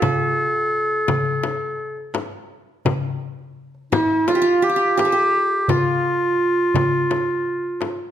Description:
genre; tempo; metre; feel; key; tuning
Arabic maqam ensemble; 85 BPM; 4/4; straight; unclear; A4 = 444 Hz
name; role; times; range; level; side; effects
clear clarinet; melody; 0.0-8.1 s; E4-50c to A4-50c; -19 LUFS; equal; none
qanun; second line; 0.0-8.1 s; E4-50c to Ab4+50c; -23 LUFS; right 5 dB; none
darbuka; percussion; 0.0-8.1 s; none; -26 LUFS; equal; none
frame drum; percussion; 0.0-8.0 s; none; -25 LUFS; left 6 dB; none
room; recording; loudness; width
moderate recital hall reverb, RT60 1.4 s; none; -18 LUFS; side -10 dB against mid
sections
0.0-8.1 A section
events
none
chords
none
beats
| 0.02 0.73 1.44 2.15 | 2.85 3.56 4.27 4.98 | 5.69 6.40 7.11 7.82

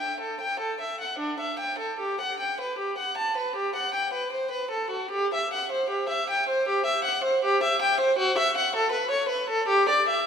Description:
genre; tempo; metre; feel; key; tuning
classical, baroque-style suite movement for unaccompanied violin; 73-80 BPM; 4/4; rubato; unclear; A4 = 444 Hz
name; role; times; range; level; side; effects
warm violin; solo; 0.0-10.3 s; D4 to A5; -24 LUFS; equal; none
room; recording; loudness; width
wet church reverb, RT60 2.5 s; minimal, uncompressed stereo recording; -24 LUFS; side -7 dB against mid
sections
0.0-10.3 A section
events
none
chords
none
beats
0.38 1.19 | 1.98 2.77 3.54 4.31 | 5.10 5.89 6.66 7.42 | 8.17 8.92 9.68

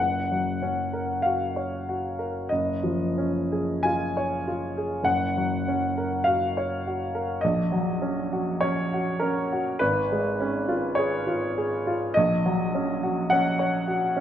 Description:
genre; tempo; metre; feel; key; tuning
classical, romantic nocturne for solo piano; 43-53 BPM; 4/4; rubato; F# major; A4 = 440 Hz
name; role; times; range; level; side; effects
clear upright piano; solo; 0.0-14.2 s; F#1 to G#5; -23 LUFS; equal; none
room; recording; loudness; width
wet recital hall reverb, RT60 1.4 s; none; -23 LUFS; side -10 dB against mid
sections
0.0-14.2 A section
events
none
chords
0.0 F#; 2.5 C#/F#; 5.1 F#; 7.4 F#/A#; 9.8 C#7/G#; 12.2 F#/A#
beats
1.24 2.50 3.84 | 5.07 6.26 7.42 8.62 | 9.80 10.98 12.16 13.31

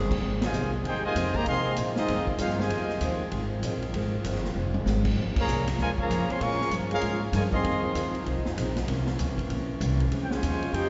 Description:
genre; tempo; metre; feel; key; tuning
jazz, big band swing; 194 BPM; 4/4; swing 62% on 8ths; F minor; A4 = 440 Hz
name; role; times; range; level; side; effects
picked steel-string acoustic guitar; accompaniment; 0.0-10.9 s; F2 to Db4; -38 LUFS; equal; none
upright bass; bass; 0.0-10.9 s; F1 to C3; -32 LUFS; equal; none
swinging big-band drum kit; drums; 0.1-10.8 s; crash cymbal, hi-hat, kick drum, ride cymbal, snare drum, toms; -36 LUFS; equal; none
warm trombone section; sustained chords; 0.2-10.9 s; Eb3 to Ab4; -40 LUFS; equal; none
warm trumpet section; melody; 0.4-3.2, 5.4-8.1, 10.2-10.9 s; C4 to Db6; -34 LUFS; equal; none
warm trombone section; second line; 0.4-3.2, 5.4-8.1, 10.3-10.9 s; C3 to G4; -36 LUFS; equal; none
room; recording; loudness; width
wet cathedral reverb, RT60 4.6 s; recorded in a church or concert hall, nothing above 7.8 kHz; -28 LUFS; mono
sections
0.2-10.9 A section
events
band accent 0.4, 5.3; drum fill 4.6-4.9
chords
0.2 Fm7; 5.2 Bbm7; 7.6 Fm7; 8.9 C7b9; 10.1 Dbmaj7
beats
| 0.23 0.53 0.84 1.15 | 1.46 1.77 2.08 2.39 | 2.70 3.01 3.32 3.63 | 3.94 4.24 4.55 4.86 | 5.17 5.48 5.79 6.10 | 6.41 6.72 7.03 7.34 | 7.64 7.95 8.26 8.57 | 8.88 9.19 9.50 9.81 | 10.12 10.42 10.73

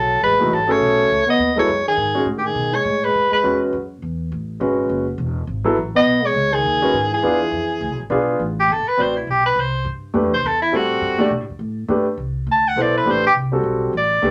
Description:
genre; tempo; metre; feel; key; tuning
modal jazz; 206 BPM; 4/4; swing 59% on 8ths; F# dorian, A dorian from 8.4 s; A4 = 440 Hz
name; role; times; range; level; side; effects
clear soprano saxophone; melody; 0.0-3.6, 6.0-14.3 s; E4 to A5; -20 LUFS; equal; none
mellow trombone; second line; 0.0-3.6, 6.0-8.1 s; D#3 to B3; -25 LUFS; equal; none
upright bass; bass; 0.0-14.3 s; E1 to B2; -29 LUFS; equal; none
warm grand piano; accompaniment; 0.4-14.3 s; E3 to D5; -22 LUFS; equal; none
room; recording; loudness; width
wet club ambience, RT60 0.5 s; none; -19 LUFS; mono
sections
0.0-8.4 A section; 8.4-14.3 B section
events
soprano saxophone solo 8.4-14.3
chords
0.0 F#m9; 1.4 G#m; 3.7 F#m9; 6.1 G#m; 7.2 E7b9; 8.4 Am9; 10.7 Gadd9; 13.1 Am9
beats
| 0.22 0.51 0.81 1.10 | 1.39 1.68 1.97 2.27 | 2.56 2.85 3.14 3.43 | 3.73 4.02 4.31 4.60 | 4.89 5.18 5.48 5.77 | 6.06 6.35 6.64 6.93 | 7.23 7.52 7.81 8.10 | 8.39 8.69 8.98 9.27 | 9.56 9.85 10.14 10.44 | 10.73 11.02 11.31 11.60 | 11.90 12.19 12.48 12.77 | 13.06 13.35 13.65 13.94 | 14.23

